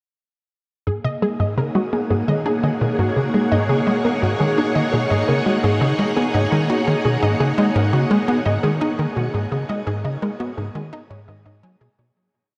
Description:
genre	ambient, sequencer-driven space music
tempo	85 BPM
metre	4/4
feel	straight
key	unclear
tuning	A4 = 440 Hz
part	string machine, full ensemble	sustained chords	0.9-12.2 s	A#3 to F#5	-25 LUFS	equal	ensemble chorus
part	unison pluck	arpeggios	0.9-12.2 s	F#4 to G#5	-28 LUFS	equal	analog delay
part	tight sequencer bass	riff	0.9-12.1 s	G#2 to D#4	-23 LUFS	equal	analog chorus, analog delay
room	wet shimmer reverb, RT60 7.7 s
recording	dark, warm production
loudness	-20 LUFS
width	mono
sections	0.9-12.2 A section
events	fade-out 8.4-12.2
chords	0.9 G#7(no3)

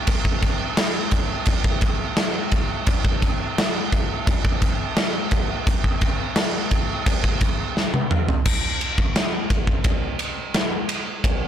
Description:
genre	metal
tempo	86 BPM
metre	4/4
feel	straight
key	none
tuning	none
part	big rock drum kit	drums	0.1-11.4 s	crash cymbal, kick drum, ride cymbal, snare drum, toms	-20 LUFS	equal	none
room	little or no reverb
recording	blown-out, overdriven recording, overdrive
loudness	-20 LUFS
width	side -10 dB against mid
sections	0.0-8.5 A section; 8.5-11.5 B section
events	drum fill 7.8-8.5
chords	none

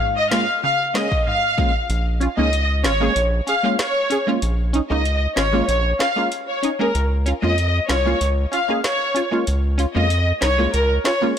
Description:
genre	dancehall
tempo	95 BPM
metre	4/4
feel	straight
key	Bb minor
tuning	A4 = 440 Hz
part	punchy chord stab	accompaniment	0.0-11.3 s	Ab2 to Ab4	-23 LUFS	right 1 dB	chorus, sidechain pumping
part	warm studio violin section	melody	0.2-11.2 s	Bb4 to F5	-21 LUFS	left 1 dB	ping-pong delay
part	afro-pop drum kit	drums	0.3-11.2 s	hi-hat, kick drum, rim click, snare drum	-25 LUFS	equal	none
part	round analog bass	bass	1.9-11.0 s	Ab1 to F2	-20 LUFS	equal	none
room	light reverb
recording	blown-out, overdriven recording, overdrive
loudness	-17 LUFS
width	side -8 dB against mid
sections	0.0-1.9 A section; 1.9-11.4 B section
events	kick muted 1.9-11.4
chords	0.0 Db6; 1.9 Bbm7; 6.9 Db6

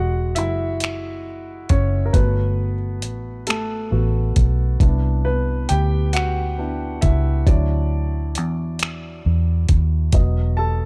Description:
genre	slow six-eight R&B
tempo	45 BPM (dotted quarters)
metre	6/8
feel	straight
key	E major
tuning	A4 = 440 Hz
part	warm concert grand piano	accompaniment	0.0-10.9 s	F#3 to A5	-28 LUFS	equal	none
part	vintage muted fingered electric bass	bass	0.0-10.9 s	E1 to E2	-22 LUFS	equal	none
part	dusty soul sampler-style drum kit	drums	0.4-10.3 s	finger snaps, hi-hat, kick drum	-20 LUFS	equal	none
room	little or no reverb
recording	dark, warm production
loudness	-20 LUFS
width	mono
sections	0.0-10.9 A section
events	grand piano solo 0.0-10.9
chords	0.0 Emaj9; 2.1 Gmaj9; 4.8 Cmaj9; 7.5 Dmaj9; 10.1 Emaj7sus2

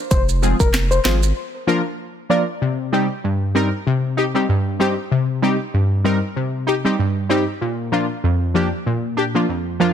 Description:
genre	dancehall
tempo	96 BPM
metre	4/4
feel	swing 56% on 16ths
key	C minor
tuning	A4 = 441 Hz
part	soft struck synth lead	melody	0.1-2.4 s	Bb4 to D5	-24 LUFS	left 2 dB	chorus, ping-pong delay
part	saturated sub bass	bass	0.1-1.3 s	F1 to Ab1	-19 LUFS	equal	none
part	afro-pop drum kit	drums	0.1-1.2 s	handclaps, hi-hat, kick drum, snare drum	-20 LUFS	equal	none
part	maracas	percussion	0.1-1.4 s	none	-30 LUFS	right 13 dB	none
part	synth brass stab	accompaniment	0.4-9.9 s	F2 to Bb4	-18 LUFS	left 1 dB	chorus, sidechain pumping
room	light reverb, digital ambience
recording	dense, heavily limited modern master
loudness	-17 LUFS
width	side -8 dB against mid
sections	0.0-2.6 A section; 2.6-9.9 B section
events	break 1.4-2.6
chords	0.1 Fm; 1.4 Bb; 2.6 Cm; 7.6 Bb

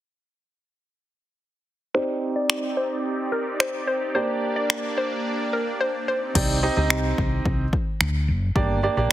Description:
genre	dance-pop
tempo	109 BPM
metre	4/4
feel	straight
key	C minor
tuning	A4 = 440 Hz
part	hollow square pluck	melody	1.9-6.2 s	Bb4 to D5	-26 LUFS	left 1 dB	chorus, low-pass filter, ping-pong delay
part	clear grand piano	accompaniment	1.9-9.1 s	Bb3 to Eb5	-27 LUFS	right 3 dB	sidechain pumping, low-pass filter
part	supersaw pad	sustained chords	1.9-6.3 s	Bb3 to D5	-29 LUFS	equal	sidechain pumping, low-pass filter
part	deep house drum kit	drums	2.5-8.7 s	crash cymbal, finger snaps, kick drum	-24 LUFS	left 1 dB	none
part	woody fretless electric bass	bass	6.4-9.1 s	F#1 to D2	-24 LUFS	equal	sidechain pumping
room	light reverb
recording	heavily compressed radio sound, multiband compression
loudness	-21 LUFS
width	side -13 dB against mid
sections	1.9-6.4 A section; 6.4-9.1 B section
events	filter sweep 1.9-6.4; silent gap 5.3-6.4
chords	1.9 Cmadd9; 4.2 Gm; 6.1 Cmadd9; 8.6 Gm

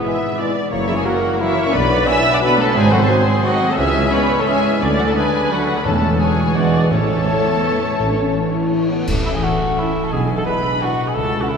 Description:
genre	classical, orchestral ballroom waltz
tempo	158-190 BPM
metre	3/4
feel	rubato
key	A major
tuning	A4 = 441 Hz
part	muted studio violin section	melody	0.0-11.6 s	B4 to E6	-24 LUFS	left 3 dB	none
part	dark clarinet	second line	0.0-11.6 s	B#3 to E4	-28 LUFS	left 1 dB	none
part	mellow cor anglais	second line	0.0-11.6 s	B3 to E5	-26 LUFS	right 1 dB	none
part	mellow hollow large flute ensemble	second line	0.0-11.6 s	E4 to B5	-25 LUFS	left 2 dB	none
part	muted studio violin section	second line	0.0-11.6 s	B3 to B5	-27 LUFS	left 2 dB	none
part	mellow bassoon	accompaniment	0.0-11.6 s	D3 to B3	-27 LUFS	right 1 dB	none
part	muted studio viola section	accompaniment	0.0-11.6 s	C#4 to E5	-24 LUFS	equal	none
part	warm French horn section	sustained chords	0.0-11.6 s	A3 to F#4	-28 LUFS	left 4 dB	none
part	concert harp	arpeggios	0.0-11.6 s	F#2 to E6	-24 LUFS	left 2 dB	none
part	muted studio cello section	bass	0.0-11.4 s	A2 to E4	-25 LUFS	right 3 dB	none
part	warm trombone section	sustained chords	0.1-11.6 s	D3 to A3	-31 LUFS	right 3 dB	none
part	mellow tuba	bass	0.7-11.4 s	E1 to D2	-28 LUFS	right 2 dB	none
part	muted symphonic double bass section	bass	0.7-11.4 s	F#1 to E2	-25 LUFS	right 3 dB	none
part	timpani	percussion	5.9-7.4 s	E2 to A2	-27 LUFS	right 1 dB	none
part	cymbal swell, clash cymbals and concert bass drum	percussion	6.9-9.7 s	none	-28 LUFS	equal	none
room	wet church reverb, RT60 3.0 s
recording	none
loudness	-15 LUFS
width	side -6 dB against mid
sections	0.0-9.1 A section; 9.1-11.6 B section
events	band accent 9.1-9.4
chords	0.0 E/G#; 0.7 F#7; 1.7 Bm; 2.8 G#7; 3.8 C#m; 4.8 D; 5.9 A/E; 6.6 E9; 6.9 A; 10.1 E7/B

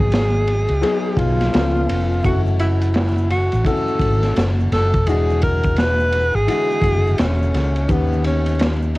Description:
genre	hip hop, jazz-hop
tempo	85 BPM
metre	4/4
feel	swing 60% on 16ths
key	F# dorian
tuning	A4 = 440 Hz
part	breathy tenor saxophone	melody	0.0-9.0 s	B3 to B4	-21 LUFS	equal	none
part	warm upright piano	accompaniment	0.0-9.0 s	D3 to A4	-24 LUFS	left 4 dB	cassette tape
part	mellow fretless electric bass	bass	0.0-9.0 s	E1 to D#2	-19 LUFS	equal	wide subtle chorus
part	crunchy breakbeat drum kit	drums	0.0-9.0 s	hi-hat, kick drum, ride cymbal, snare drum	-22 LUFS	equal	cassette tape
part	egg shaker and congas	percussion	2.2-8.9 s	none	-36 LUFS	right 5 dB	none
room	little or no reverb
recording	home recording on cassette, vinyl crackle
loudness	-15 LUFS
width	side -19 dB against mid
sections	0.0-9.0 A section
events	none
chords	0.0 G#m7; 1.5 C#7b13; 2.2 F#m7; 5.1 E9; 7.9 D#7b13

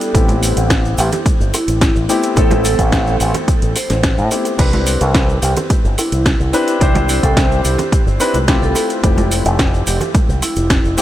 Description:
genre	nu-disco, nu disco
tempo	108 BPM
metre	4/4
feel	straight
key	C major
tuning	A4 = 440 Hz
part	vibraphone with medium mallets	melody	0.0-11.0 s	E4 to C5	-23 LUFS	right 1 dB	analog delay
part	dark grand piano	accompaniment	0.0-11.0 s	F3 to C5	-20 LUFS	left 2 dB	vintage 12-bit sampler grit, tape echo
part	house drum kit	drums	0.0-11.0 s	cabasa, crash cymbal, hi-hat, snare drum	-21 LUFS	equal	none
part	cabasa, congas and bongos	percussion	0.0-11.0 s	none	-26 LUFS	right 2 dB	none
part	fingered electric bass with an envelope filter	bass	0.1-11.0 s	F1 to A2	-17 LUFS	equal	none
part	electronic kick drum	drums	0.1-10.8 s	none	-15 LUFS	equal	none
room	light reverb, small room ambience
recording	none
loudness	-12 LUFS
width	side -13 dB against mid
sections	0.0-11.0 A section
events	none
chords	0.1 Am7; 4.6 Cmaj9; 8.8 Fmaj9

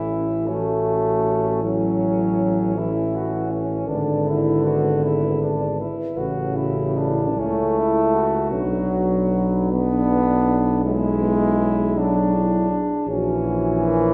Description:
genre	classical, hymn-like piece for brass band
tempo	53 BPM (dotted quarters)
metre	12/8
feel	rubato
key	A major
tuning	A4 = 442 Hz
part	mellow flugelhorn	melody	0.0-14.1 s	C#4 to F#4	-30 LUFS	equal	none
part	dark French horn section	second line	0.0-14.1 s	F#4 to B4	-33 LUFS	equal	none
part	warm euphonium	accompaniment	0.0-13.9 s	B3 to F#4	-30 LUFS	equal	none
part	warm trombone	accompaniment	0.0-14.1 s	C#3 to B3	-24 LUFS	equal	none
part	warm tuba	bass	0.0-14.1 s	G#1 to C#2	-27 LUFS	equal	none
room	wet recital hall reverb, RT60 1.4 s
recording	recorded in a church or concert hall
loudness	-21 LUFS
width	mono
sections	0.0-14.1 A section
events	none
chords	0.0 A; 3.9 E7/G#; 6.2 A; 8.5 Bm; 13.1 F#7/A#

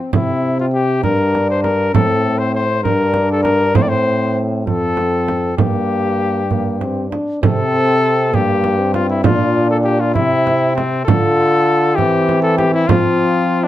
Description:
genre	classical, renaissance-style consort dance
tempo	66 BPM (dotted quarters)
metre	6/8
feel	straight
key	G dorian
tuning	A4 = 440 Hz
part	warm trombone	accompaniment	0.0-13.7 s	Bb3 to F4	-20 LUFS	left 1 dB	none
part	bright trombone	bass	0.1-13.7 s	F2 to F3	-20 LUFS	right 2 dB	none
part	frame drum	percussion	0.1-13.2 s	none	-18 LUFS	right 4 dB	none
part	warm cornet	melody	0.2-13.7 s	C4 to D5	-17 LUFS	left 3 dB	none
room	moderate stone room reverb, RT60 1.1 s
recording	dark, warm production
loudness	-13 LUFS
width	side -13 dB against mid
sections	0.0-7.4 A section; 7.4-13.7 A section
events	none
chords	0.1 C; 1.0 Gm; 1.9 Am; 2.8 Gm; 3.7 Am; 4.7 F; 5.6 Gm; 7.4 Am/C; 8.3 Gm; 9.2 Bb; 10.2 C; 11.1 Dm; 12.0 C/E; 12.9 F5

